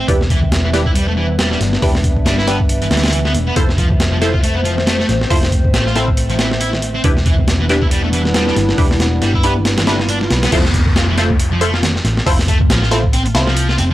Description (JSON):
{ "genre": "breakbeat, breaks", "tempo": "138 BPM", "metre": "4/4", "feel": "swing 57% on 16ths", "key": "unclear", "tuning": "A4 = 439 Hz", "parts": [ { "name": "warbly tape-like pad", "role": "sustained chords", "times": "0.0-10.5 s", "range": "G3 to E5", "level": "-22 LUFS", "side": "equal", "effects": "chorus, built-in reverb, sidechain pumping" }, { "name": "thick fuzz guitar", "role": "riff", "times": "0.0-13.9 s", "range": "D3 to F4", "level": "-21 LUFS", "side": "equal", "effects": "distortion, vintage 12-bit sampler grit, tape echo" }, { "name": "hollow-body short-scale picked electric bass", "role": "bass", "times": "0.0-13.9 s", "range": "E1 to D2", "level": "-18 LUFS", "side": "equal", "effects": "none" }, { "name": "filtered dub chord stab", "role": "stabs", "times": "0.1-13.5 s", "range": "D4 to C5", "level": "-22 LUFS", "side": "equal", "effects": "phaser, wide subtle chorus, cassette tape, tape echo" }, { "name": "breakbeat sampler-style drum kit", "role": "drums", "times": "0.1-13.9 s", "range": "crash cymbal, hi-hat, kick drum, snare drum", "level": "-16 LUFS", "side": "equal", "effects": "studio reverb" }, { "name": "swell and downlifter", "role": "sound effects", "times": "9.8-13.9 s", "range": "none", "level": "-26 LUFS", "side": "equal", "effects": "none" } ], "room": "little or no reverb", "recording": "dry, gritty hardware recording", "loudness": "-12 LUFS", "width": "side -15 dB against mid", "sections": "0.0-10.5 A section; 10.5-13.9 B section", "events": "swell 9.8-10.5; drop 10.5-13.9", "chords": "0.1 Em7; 3.6 Fmaj7; 7.0 Em7; 10.5 Fmaj7", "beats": "| 0.09 0.52 0.96 1.39 | 1.83 2.26 2.70 3.13 | 3.57 4.00 4.44 4.87 | 5.31 5.74 6.18 6.61 | 7.05 7.48 7.92 8.35 | 8.79 9.22 9.65 10.09 | 10.52 10.96 11.39 11.83 | 12.26 12.70 13.13 13.57" }